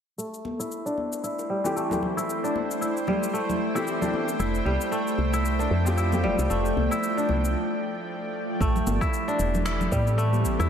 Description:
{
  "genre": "organic downtempo",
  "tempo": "114 BPM",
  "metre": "4/4",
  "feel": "swing 57% on 16ths",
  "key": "A minor",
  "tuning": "A4 = 440 Hz",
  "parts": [
    { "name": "bowed-like drone", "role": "sustained chords", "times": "1.2-10.7 s", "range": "E3 to G5", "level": "-29 LUFS", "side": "equal", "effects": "built-in reverb, sidechain pumping" },
    { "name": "kora", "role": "arpeggios", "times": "0.2-10.7 s", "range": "G3 to E4", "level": "-28 LUFS", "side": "left 1 dB", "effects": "low-pass filter, tape echo" },
    { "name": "electronic shaker and finger snaps", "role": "drums", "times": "0.2-10.7 s", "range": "none", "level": "-38 LUFS", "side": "left 3 dB", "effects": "none" },
    { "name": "congas and bongos", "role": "percussion", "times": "0.4-10.4 s", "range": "none", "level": "-34 LUFS", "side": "equal", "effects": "none" },
    { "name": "felt-muted upright piano", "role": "accompaniment", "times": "1.6-7.6 s", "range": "E3 to G4", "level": "-32 LUFS", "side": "left 2 dB", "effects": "sidechain pumping, low-pass filter, tape echo" },
    { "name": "woody FM bass", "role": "bass", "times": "4.4-10.7 s", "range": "E1 to A2", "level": "-25 LUFS", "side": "equal", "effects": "sidechain pumping" },
    { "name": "electronic kick drum", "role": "drums", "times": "8.6-10.0 s", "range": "none", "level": "-28 LUFS", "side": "equal", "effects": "none" }
  ],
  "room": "wet plate reverb, RT60 2.0 s",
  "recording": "dreamy mix soaked in reverb",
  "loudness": "-23 LUFS",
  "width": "side -8 dB against mid",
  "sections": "0.2-8.6 A section; 8.6-10.7 B section",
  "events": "filter sweep on kora 0.2-8.6; break 7.6-8.6",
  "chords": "0.2 Am7; 4.4 Fadd9; 8.6 Am7"
}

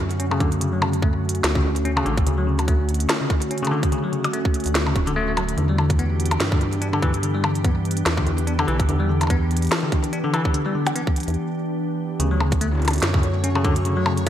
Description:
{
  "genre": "IDM",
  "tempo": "145 BPM",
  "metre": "4/4",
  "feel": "swing 56% on 16ths",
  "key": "unclear",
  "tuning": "A4 = 439 Hz",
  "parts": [
    { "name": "glassy FM pad", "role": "sustained chords", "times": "0.0-14.3 s", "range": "D3 to G4", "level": "-26 LUFS", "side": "equal", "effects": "ensemble chorus, built-in reverb" },
    { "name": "rubbery square bass", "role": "bass", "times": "0.0-14.3 s", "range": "D1 to G2", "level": "-23 LUFS", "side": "equal", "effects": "tube saturation" },
    { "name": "glitchy drum kit", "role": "drums", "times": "0.1-14.3 s", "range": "hi-hat, percussion blips, snare drum, toms", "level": "-26 LUFS", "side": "equal", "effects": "overdrive, gated reverb, digital delay" },
    { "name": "bell-like tine electric piano", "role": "arpeggios", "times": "0.2-14.3 s", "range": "C#3 to D4", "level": "-26 LUFS", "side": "left 2 dB", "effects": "low-pass filter, digital delay" },
    { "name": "electronic kick drum", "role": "drums", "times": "0.4-14.3 s", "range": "none", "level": "-22 LUFS", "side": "equal", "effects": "overdrive" },
    { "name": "backwards swelling texture", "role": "texture", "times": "12.9-14.3 s", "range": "C#5", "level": "-35 LUFS", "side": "left 1 dB", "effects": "built-in reverb" }
  ],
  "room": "moderate lush hall reverb, RT60 1.8 s, digital ambience",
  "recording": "bright 1980s-style digital production",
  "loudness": "-19 LUFS",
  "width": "side -11 dB against mid",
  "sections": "0.0-12.2 A section; 12.2-14.3 B section",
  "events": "break 11.4-12.2",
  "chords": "0.0 Dmaj7; 5.6 Em7; 12.2 Dmaj7"
}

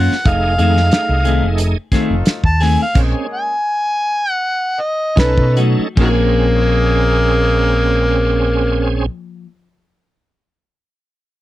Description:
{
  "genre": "straight-eighth soul blues",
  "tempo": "73-91 BPM",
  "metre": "4/4",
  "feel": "straight",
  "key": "Bb minor",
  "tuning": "A4 = 442 Hz",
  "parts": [
    { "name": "overdriven harmonica", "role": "melody", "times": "0.0-9.1 s", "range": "Eb3 to A5", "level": "-17 LUFS", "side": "equal", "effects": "none" },
    { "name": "clean electric guitar", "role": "stabs", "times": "0.0-9.6 s", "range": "Eb3 to G#4", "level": "-21 LUFS", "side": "left 4 dB", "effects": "spring reverb" },
    { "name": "fingered electric bass", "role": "bass", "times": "0.0-9.1 s", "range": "F1 to B2", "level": "-16 LUFS", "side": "equal", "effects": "none" },
    { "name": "warm soul drum kit", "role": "drums", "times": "0.1-6.2 s", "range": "crash cymbal, hi-hat, kick drum, snare drum", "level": "-16 LUFS", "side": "equal", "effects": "none" },
    { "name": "bright tonewheel organ", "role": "accompaniment", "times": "0.2-9.1 s", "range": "A3 to A4", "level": "-21 LUFS", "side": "right 5 dB", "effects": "slow rotary speaker, overdrive, chorus vibrato" },
    { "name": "dark horn section", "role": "sustained chords", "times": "0.2-9.1 s", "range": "F3 to A4", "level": "-28 LUFS", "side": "left 2 dB", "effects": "none" }
  ],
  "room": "little or no reverb",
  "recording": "dry, close 1970s-style studio recording",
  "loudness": "-13 LUFS",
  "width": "side -15 dB against mid",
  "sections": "0.0-6.0 A section; 6.0-9.3 B section",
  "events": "harmonica solo 0.0-6.0; slowing down 0.3-6.0; stop 3.0-5.2",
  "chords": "0.3 F7#9; 3.0 Bbm7; 5.2 B7; 6.0 Bbm7"
}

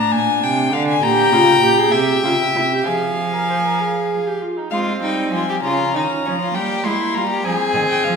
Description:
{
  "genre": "classical, baroque-style fugue for string quartet",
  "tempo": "66 BPM (dotted quarters)",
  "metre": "6/8",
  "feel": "straight",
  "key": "F minor",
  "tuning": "A4 = 440 Hz",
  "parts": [
    { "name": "rich violin", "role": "melody", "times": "0.0-8.2 s", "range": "F5 to C6", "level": "-20 LUFS", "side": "left 7 dB", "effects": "none" },
    { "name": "warm viola", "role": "accompaniment", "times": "0.0-8.2 s", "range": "Bb3 to C5", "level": "-21 LUFS", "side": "right 3 dB", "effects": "none" },
    { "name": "rich cello", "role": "bass", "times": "0.0-8.2 s", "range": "A2 to Ab3", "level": "-23 LUFS", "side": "right 4 dB", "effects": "none" },
    { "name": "rich violin", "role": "second line", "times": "1.0-8.2 s", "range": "Db4 to G5", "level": "-21 LUFS", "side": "equal", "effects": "none" }
  ],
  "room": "wet recital hall reverb, RT60 1.7 s",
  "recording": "recorded in a church or concert hall",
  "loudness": "-15 LUFS",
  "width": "side -5 dB against mid",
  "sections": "0.0-4.7 A section; 4.7-8.2 B section",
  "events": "none",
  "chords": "0.1 Gm/Bb; 1.0 Gdim/Bb; 1.9 C; 2.9 Fm; 5.6 Db6; 6.5 Edim/G; 7.4 Fm"
}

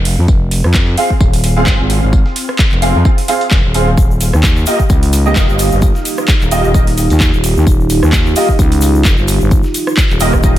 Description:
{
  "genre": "bass house",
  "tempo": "130 BPM",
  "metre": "4/4",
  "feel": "swing 56% on 16ths",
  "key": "unclear",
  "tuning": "A4 = 440 Hz",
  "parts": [
    { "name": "growling FM bass", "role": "bass", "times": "0.0-10.6 s", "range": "Eb1 to F2", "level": "-13 LUFS", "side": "equal", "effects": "tube saturation, sidechain pumping" },
    { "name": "dusty soul sampler-style drum kit", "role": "drums", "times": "0.1-10.6 s", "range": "hi-hat, snare drum, tambourine", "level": "-29 LUFS", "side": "left 3 dB", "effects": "none" },
    { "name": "garage drum kit", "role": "drums", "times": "0.1-10.6 s", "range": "handclaps, hi-hat, rim click", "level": "-19 LUFS", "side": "right 1 dB", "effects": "overdrive, studio ambience" },
    { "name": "electronic kick drum", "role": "drums", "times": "0.3-10.5 s", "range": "none", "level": "-12 LUFS", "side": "equal", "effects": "studio ambience" },
    { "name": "clear baby grand piano", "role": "stabs", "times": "1.0-10.5 s", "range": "Bb3 to F5", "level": "-18 LUFS", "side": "right 1 dB", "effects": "ensemble chorus, sidechain pumping, ping-pong delay" },
    { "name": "dark analog pad", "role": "sustained chords", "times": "4.0-10.6 s", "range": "Eb4 to G4", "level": "-19 LUFS", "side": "right 2 dB", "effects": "chorus, sidechain pumping" },
    { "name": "tube shaker", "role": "percussion", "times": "4.0-10.6 s", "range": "none", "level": "-27 LUFS", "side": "left 4 dB", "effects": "none" }
  ],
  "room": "light reverb",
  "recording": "none",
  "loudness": "-9 LUFS",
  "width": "side -13 dB against mid",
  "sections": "0.0-10.6 A section",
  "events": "filter sweep on FM bass 0.0-10.6",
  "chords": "0.0 Fm; 4.0 Ebadd9"
}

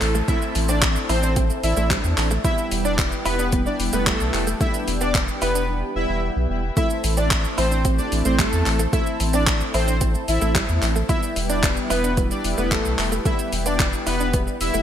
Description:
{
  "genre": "dance-pop",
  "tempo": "111 BPM",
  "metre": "4/4",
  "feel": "straight",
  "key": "A minor",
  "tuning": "A4 = 440 Hz",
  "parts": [
    { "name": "soft supersaw", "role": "melody", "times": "0.0-14.8 s", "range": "A3 to E5", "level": "-25 LUFS", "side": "equal", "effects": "ping-pong delay" },
    { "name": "mellow synth brass", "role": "accompaniment", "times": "0.0-14.8 s", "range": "G3 to G4", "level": "-29 LUFS", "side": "equal", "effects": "chorus, phaser, sidechain pumping" },
    { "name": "chorused pulse-width pad", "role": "sustained chords", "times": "0.0-14.8 s", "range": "E4 to A5", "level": "-32 LUFS", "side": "left 1 dB", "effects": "sidechain pumping" },
    { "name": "direct-recorded clean electric guitar", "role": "riff", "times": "0.0-14.8 s", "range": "G3 to E4", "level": "-30 LUFS", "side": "right 4 dB", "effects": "wide subtle chorus" },
    { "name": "warm sub bass", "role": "bass", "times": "0.0-14.8 s", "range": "E1 to E2", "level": "-24 LUFS", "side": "equal", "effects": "sidechain pumping" },
    { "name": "deep house drum kit", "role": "drums", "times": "0.0-14.8 s", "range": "handclaps, hi-hat, kick drum, shaker", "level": "-23 LUFS", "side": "equal", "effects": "overdrive, gated reverb" },
    { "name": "downlifter", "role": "sound effects", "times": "0.0-2.4 s", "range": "none", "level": "-37 LUFS", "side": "equal", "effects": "none" }
  ],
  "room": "light reverb",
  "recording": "bright 1980s-style digital production",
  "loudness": "-19 LUFS",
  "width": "side -10 dB against mid",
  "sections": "0.0-14.8 A section",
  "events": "break 5.7-6.8",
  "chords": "0.0 Am; 2.4 Em; 6.8 Am; 11.1 Em"
}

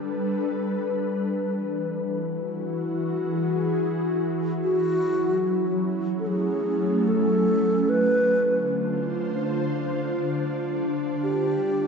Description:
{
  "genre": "ambient",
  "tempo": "free time",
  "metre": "none",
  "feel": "none",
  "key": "unclear",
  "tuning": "A4 = 440 Hz",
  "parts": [
    { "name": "ethereal airy pad", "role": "sustained chords", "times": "0.0-11.9 s", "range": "D3 to C5", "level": "-24 LUFS", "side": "equal", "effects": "ensemble chorus, built-in reverb" },
    { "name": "mellow alto flute", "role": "melody", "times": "4.6-11.9 s", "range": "F#4 to B4", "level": "-24 LUFS", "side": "equal", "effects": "tape echo" }
  ],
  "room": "wet spring reverb, RT60 2.6 s",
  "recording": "echo-heavy mix, nothing above 8.0 kHz",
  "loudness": "-22 LUFS",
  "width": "side -5 dB against mid",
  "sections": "0.0-11.9 A section",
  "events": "filter sweep on ambient pad 0.0-11.9",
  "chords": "0.0 Gadd9; 1.3 Eadd9; 4.6 F#m7; 7.9 Dm7; 11.2 G5"
}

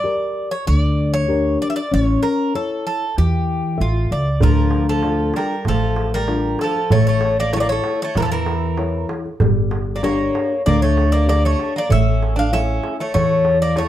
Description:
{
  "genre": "greek folk, Greek bouzouki band",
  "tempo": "96 BPM",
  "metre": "4/4",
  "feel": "straight",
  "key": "D harmonic minor",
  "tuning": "A4 = 440 Hz",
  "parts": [
    { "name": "Greek bouzouki", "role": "melody", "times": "0.0-13.9 s", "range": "F4 to F5", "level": "-21 LUFS", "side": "equal", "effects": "plate reverb" },
    { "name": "nylon-string guitar", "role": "accompaniment", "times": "0.0-13.9 s", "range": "D3 to E5", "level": "-22 LUFS", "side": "left 3 dB", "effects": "none" },
    { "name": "upright bass", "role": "bass", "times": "0.7-13.9 s", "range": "G1 to E2", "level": "-19 LUFS", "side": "equal", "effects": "none" },
    { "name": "Greek bouzouki", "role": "second line", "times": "4.4-13.9 s", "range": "E3 to D4", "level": "-27 LUFS", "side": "right 3 dB", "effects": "none" },
    { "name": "darbuka", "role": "percussion", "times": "4.4-13.9 s", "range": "none", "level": "-22 LUFS", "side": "right 2 dB", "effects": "none" }
  ],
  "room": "moderate studio reverb, RT60 0.7 s",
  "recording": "dark, warm production, faint mains hum",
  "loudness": "-16 LUFS",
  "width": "side -12 dB against mid",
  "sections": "0.0-4.4 A section; 4.4-13.9 B section",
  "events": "none",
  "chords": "0.0 Gm; 1.9 A; 4.4 Dm; 6.9 A; 9.4 Gm; 11.9 A"
}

